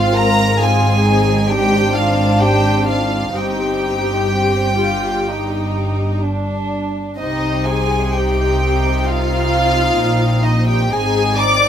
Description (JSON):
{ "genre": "classical, slow romantic movement for string orchestra", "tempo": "61-67 BPM", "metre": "4/4", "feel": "rubato", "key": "C minor", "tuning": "A4 = 440 Hz", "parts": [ { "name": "warm symphonic violin section", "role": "melody", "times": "0.0-11.7 s", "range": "Eb5 to D6", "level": "-19 LUFS", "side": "equal", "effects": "none" }, { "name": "dark studio violin section", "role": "second line", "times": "0.0-11.7 s", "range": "C4 to F4", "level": "-21 LUFS", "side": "equal", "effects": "none" }, { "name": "dark symphonic viola section", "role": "accompaniment", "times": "0.0-11.7 s", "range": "Eb4 to D5", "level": "-21 LUFS", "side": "left 2 dB", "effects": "none" }, { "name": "rich symphonic cello section", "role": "bass", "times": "0.0-11.7 s", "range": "G2 to C3", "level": "-22 LUFS", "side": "equal", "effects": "none" }, { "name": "warm symphonic double bass section", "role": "bass", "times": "0.0-11.7 s", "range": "G1 to C2", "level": "-20 LUFS", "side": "equal", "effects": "none" } ], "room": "little or no reverb", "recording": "close, detailed microphones", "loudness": "-14 LUFS", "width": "side -9 dB against mid", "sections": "0.0-11.7 A section", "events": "none", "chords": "0.0 Fm/Ab; 1.5 Fm69/Ab; 3.3 Cm/G; 7.2 Cm; 10.9 Ab" }